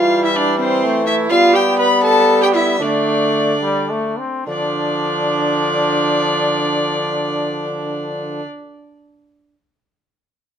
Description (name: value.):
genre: classical, renaissance-style consort dance.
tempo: 68-85 BPM (dotted quarters).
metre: 6/8.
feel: straight.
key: D dorian.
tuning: A4 = 440 Hz.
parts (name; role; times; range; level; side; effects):
warm violin; melody; 0.0-8.4 s; C5 to B5; -20 LUFS; left 3 dB; none.
warm viola; second line; 0.0-8.4 s; C4 to B4; -20 LUFS; right 4 dB; none.
brilliant trombone; accompaniment; 0.0-8.4 s; F3 to C4; -21 LUFS; left 2 dB; none.
mellow bassoon; bass; 0.0-8.4 s; D3 to G3; -21 LUFS; equal; none.
room: moderate stone room reverb, RT60 1.0 s.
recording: none.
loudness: -14 LUFS.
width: side -8 dB against mid.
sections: 0.0-4.5 A section; 4.5-8.0 B section.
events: slowing down 0.6-4.5.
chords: 0.0 Em; 1.3 G; 2.8 D5; 4.5 Dm.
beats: 0.59 | 1.31 2.04 | 2.81 3.61 | 4.47 5.35 | 6.23 7.11.